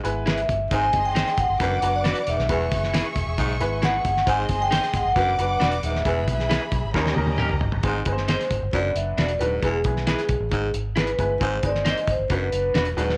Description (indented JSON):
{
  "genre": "uptempo 1960s-style soul",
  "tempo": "135 BPM",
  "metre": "4/4",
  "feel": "straight",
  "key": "unclear",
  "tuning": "A4 = 439 Hz",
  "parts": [
    { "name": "clear upright piano", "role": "accompaniment", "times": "0.0-13.1 s", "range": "F#3 to B#4", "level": "-32 LUFS", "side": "equal", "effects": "none" },
    { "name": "vintage muted fingered electric bass", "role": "bass", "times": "0.0-13.2 s", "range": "D#1 to D#2", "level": "-30 LUFS", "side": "equal", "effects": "none" },
    { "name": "cloth-damped thuddy drum kit", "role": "drums", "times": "0.0-13.1 s", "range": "hi-hat, kick drum, snare drum, toms", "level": "-29 LUFS", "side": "equal", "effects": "none" },
    { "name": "vibraphone with soft mallets", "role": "melody", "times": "0.3-13.2 s", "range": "G#4 to G#5", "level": "-27 LUFS", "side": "equal", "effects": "none" },
    { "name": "electric guitar at the edge of break-up", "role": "stabs", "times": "0.3-12.9 s", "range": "C#4 to B#4", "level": "-31 LUFS", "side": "equal", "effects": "lush chorus" },
    { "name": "warm studio string section", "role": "second line", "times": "0.7-7.8 s", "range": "G4 to D6", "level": "-34 LUFS", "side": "equal", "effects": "none" },
    { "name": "raspy baritone saxophone", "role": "riff", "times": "0.7-13.2 s", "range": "D#2 to G#2", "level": "-33 LUFS", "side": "equal", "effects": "none" }
  ],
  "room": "light reverb, small room ambience",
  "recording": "none",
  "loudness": "-23 LUFS",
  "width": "mono",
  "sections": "0.0-7.8 A section; 7.8-13.2 B section",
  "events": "drum fill 6.9-7.8; vibraphone solo 7.8-13.2",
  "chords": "0.0 E; 0.7 G#; 1.6 Bm/F#; 2.5 E; 4.3 G#; 5.2 Bm/F#; 6.1 E; 6.9 D#7; 7.8 G#; 8.7 Bm/F#; 9.6 E; 11.4 G#; 12.3 Bm/F#"
}